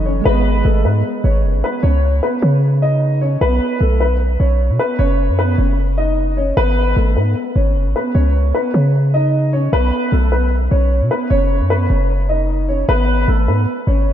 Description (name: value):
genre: hip hop, trap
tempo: 152 BPM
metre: 4/4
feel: half-time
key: unclear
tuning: A4 = 440 Hz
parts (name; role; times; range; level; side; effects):
- dark concert grand piano; melody; 0.0-14.1 s; A3 to D#5; -18 LUFS; left 1 dB; lush chorus, low-pass filter, diffuse ambient delay
- tine electric piano; accompaniment; 0.0-1.9 s; E3 to D#5; -24 LUFS; right 1 dB; medium stereo tremolo, low-pass filter
- warm 808-style bass; bass; 0.0-14.1 s; F#1 to C#3; -15 LUFS; equal; none
room: light reverb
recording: none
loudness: -13 LUFS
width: side -10 dB against mid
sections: 0.0-1.8 A section; 1.8-14.1 B section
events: none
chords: 0.3 G#m; 1.8 C#sus2; 3.4 Aadd9/B (rootless); 5.0 F#5; 6.6 G#m; 8.1 C#sus2; 9.7 Aadd9/B (rootless); 11.3 F#5; 12.9 G#m